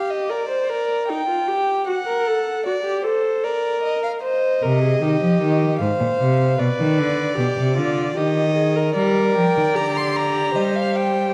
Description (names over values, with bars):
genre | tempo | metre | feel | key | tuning
classical, baroque-style fugue for string quartet | 76 BPM | 3/4 | straight | C minor | A4 = 440 Hz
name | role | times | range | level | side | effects
dark violin | second line | 0.0-11.3 s | C5 to G5 | -27 LUFS | equal | none
rich viola | accompaniment | 0.0-11.3 s | Eb4 to C5 | -24 LUFS | equal | none
rich cello | bass | 4.6-11.3 s | Ab2 to G3 | -22 LUFS | equal | none
warm violin | melody | 9.4-11.3 s | Eb5 to C6 | -25 LUFS | equal | none
room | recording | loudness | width
moderate recital hall reverb, RT60 1.5 s | dark, warm production | -20 LUFS | mono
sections
0.0-11.3 A section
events
none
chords
0.0 Gm; 1.1 Ebadd9; 1.9 D; 3.4 Bbadd11; 4.2 Cm; 5.8 F5; 6.6 G; 8.2 Ebadd11; 9.0 Gm; 10.6 Cm/G